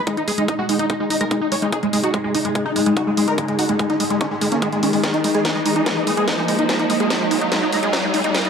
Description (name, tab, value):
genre	psychedelic trance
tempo	145 BPM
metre	4/4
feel	straight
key	unclear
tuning	A4 = 440 Hz
part	overtone-sweeping drone	sustained chords	0.3-8.5 s	G#3 to D#4	-25 LUFS	left 1 dB	chorus, built-in reverb, phaser, sidechain pumping
part	riser	sound effects	0.0-8.5 s	none	-26 LUFS	equal	none
part	dense compressed supersaw	melody	0.1-8.5 s	G#3 to C#5	-22 LUFS	right 1 dB	phaser, sidechain pumping, tape echo
part	overdriven acid bass	riff	0.1-8.5 s	G#3 to D#4	-23 LUFS	equal	auto-pan, sidechain pumping, ping-pong delay
part	electronic kick drum	drums	0.1-8.4 s	none	-24 LUFS	equal	high-pass filter on kick
part	garage drum kit	drums	0.1-8.5 s	hi-hat, snare drum	-25 LUFS	equal	high-pass filter on snare, high-pass filter on hats
room	wet lush hall reverb, RT60 1.7 s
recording	dark, warm production, high-pass filter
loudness	-17 LUFS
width	side -6 dB against mid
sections	0.0-8.5 A section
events	build-up 0.0-8.5; riser 0.0-8.5; filter sweep on acid bass 0.0-8.5; filter sweep on synth drone 0.0-8.5; drum fill 5.0-8.5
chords	0.0 G#5